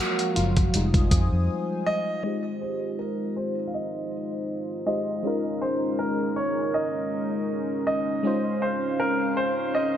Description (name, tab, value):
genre	contemporary R&B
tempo	80 BPM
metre	4/4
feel	swing 54% on 16ths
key	F minor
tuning	A4 = 440 Hz
part	FM electric piano	accompaniment	0.0-10.0 s	F3 to C5	-29 LUFS	left 1 dB	chorus, phaser, low-pass filter
part	chorused pulse-width pad	sustained chords	0.0-10.0 s	Ab3 to Eb6	-30 LUFS	right 1 dB	low-pass filter
part	dusty soul sampler-style drum kit	drums	0.2-1.3 s	hi-hat, kick drum	-22 LUFS	equal	gated reverb
part	vintage muted fingered electric bass	bass	0.4-1.5 s	F1 to F2	-24 LUFS	equal	none
part	clear concert grand piano	melody	1.9-10.0 s	Bb4 to F5	-28 LUFS	equal	low-pass filter, digital delay
room	moderate plate reverb, RT60 3.4 s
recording	bright 1980s-style digital production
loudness	-23 LUFS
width	side -10 dB against mid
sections	0.0-2.2 A section; 2.2-10.0 B section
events	FM electric piano solo 0.0-2.2; break 1.5-2.2; filter sweep 2.2-10.0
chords	0.0 Gbmaj7; 0.7 Fm7; 5.2 Eb7sus4; 8.2 Dbmaj7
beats	0.74 1.49 | 2.24 2.99 3.74 4.49 | 5.24 5.99 6.74 7.49 | 8.24 8.99 9.74